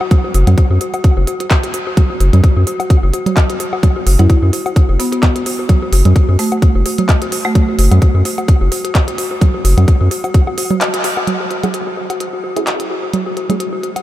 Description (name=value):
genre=minimal techno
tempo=129 BPM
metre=4/4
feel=swing 55% on 16ths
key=F# minor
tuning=A4 = 440 Hz
part: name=dark detuned synth bell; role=riff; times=0.0-14.0 s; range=F#4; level=-21 LUFS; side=left 2 dB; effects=chorus, sidechain pumping, low-pass filter, tape echo
part: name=woodblock and congas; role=percussion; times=0.0-14.0 s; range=none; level=-22 LUFS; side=right 4 dB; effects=tape echo
part: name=electronic kick drum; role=drums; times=0.1-10.4 s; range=none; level=-12 LUFS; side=equal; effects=none
part: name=minimal click drum kit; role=drums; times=0.1-14.0 s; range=handclaps, hi-hat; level=-22 LUFS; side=right 1 dB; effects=overdrive
part: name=round analog bass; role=bass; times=0.3-10.1 s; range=F#1 to F#2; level=-10 LUFS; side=equal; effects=sidechain pumping
part: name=buzzing marimba with medium hard mallets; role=melody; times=4.2-8.1 s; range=A3 to E4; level=-22 LUFS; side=right 1 dB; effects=tape echo
part: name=filtered dub chord stab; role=stabs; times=11.6-13.6 s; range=A3 to G#4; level=-25 LUFS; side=right 1 dB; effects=phaser, tape echo
room=light reverb, digital ambience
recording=none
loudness=-11 LUFS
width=side -14 dB against mid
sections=0.0-11.3 A section; 11.3-14.0 B section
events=drop 0.0-11.3; break 10.8-11.3; band accent 10.8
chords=0.0 N.C.; 11.3 F#m7